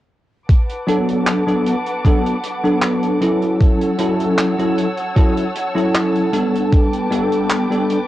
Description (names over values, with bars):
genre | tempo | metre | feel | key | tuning
vaporwave | 77 BPM | 4/4 | straight | D major | A4 = 440 Hz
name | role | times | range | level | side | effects
warm symphonic string section | sustained chords | 0.5-8.1 s | B4 to E6 | -25 LUFS | equal | low-pass filter, cassette tape
electronic kick drum | drums | 0.5-6.9 s | none | -13 LUFS | equal | vintage 12-bit sampler grit
tight funk drum kit | drums | 0.5-8.1 s | handclaps, hi-hat | -24 LUFS | equal | vintage 12-bit sampler grit
bell-like tine electric piano | accompaniment | 0.9-8.0 s | F#3 to A4 | -17 LUFS | equal | fast stereo tremolo, ensemble chorus, vintage 12-bit sampler grit, cassette tape, analog delay
room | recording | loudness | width
moderate small room reverb, RT60 0.5 s | home recording on cassette | -15 LUFS | side -14 dB against mid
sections
0.5-8.1 A section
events
none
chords
0.5 D6; 3.6 F#m7; 6.7 A9sus4